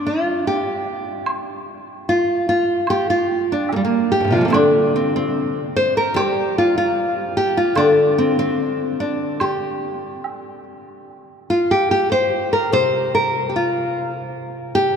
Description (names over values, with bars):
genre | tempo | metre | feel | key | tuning
chinese traditional, Chinese chamber ensemble | 74 BPM | 2/4 | rubato | G yu mode | A4 = 440 Hz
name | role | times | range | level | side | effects
nylon-string guitar | melody | 0.0-15.0 s | F2 to C5 | -18 LUFS | equal | none
woodblock | percussion | 1.3-10.4 s | none | -29 LUFS | right 2 dB | none
guzheng | accompaniment | 4.5-10.2, 12.7-15.0 s | C3 to G3 | -21 LUFS | left 2 dB | none
room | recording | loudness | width
wet cathedral reverb, RT60 5.0 s | in a vast, echoing space | -16 LUFS | side -7 dB against mid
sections
0.0-11.1 A section; 11.1-15.0 B section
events
none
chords
none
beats
0.46 | 1.27 2.07 | 2.88 3.69 | 4.53 5.35 | 6.16 6.97 | 7.77 8.58 | 9.41 10.25 | 11.09 11.93 | 12.74 13.55 | 14.36